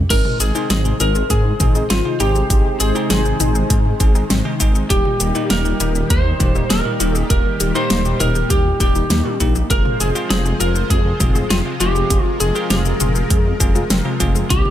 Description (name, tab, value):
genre	synthwave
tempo	100 BPM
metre	4/4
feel	straight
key	unclear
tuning	A4 = 444 Hz
part	dark detuned saw bass	bass	0.0-14.6 s	Eb1 to Ab2	-19 LUFS	equal	none
part	lightly driven lead guitar	melody	0.1-14.7 s	F4 to C5	-23 LUFS	equal	digital delay
part	FM electric piano with soft pad layer	second line	0.1-14.7 s	F4 to C5	-28 LUFS	left 1 dB	chorus, tape echo
part	warm analog pad	sustained chords	0.1-14.7 s	Bb2 to C5	-25 LUFS	left 1 dB	chorus, vintage 12-bit sampler grit, sidechain pumping
part	analog pluck	arpeggios	0.1-14.7 s	Bb2 to Ab4	-27 LUFS	left 4 dB	chorus, tape echo
part	bell-like tine electric piano	stabs	0.1-14.7 s	G3 to Ab4	-26 LUFS	right 4 dB	tape echo
part	electronic kick drum	drums	0.1-14.6 s	none	-18 LUFS	equal	none
part	pop drum kit	drums	0.1-14.7 s	cabasa, crash cymbal, hi-hat, snare drum, toms	-21 LUFS	left 1 dB	none
room	little or no reverb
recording	none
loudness	-14 LUFS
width	side -11 dB against mid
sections	0.1-14.7 A section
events	none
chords	0.1 Ab; 4.9 Eb; 9.7 Fm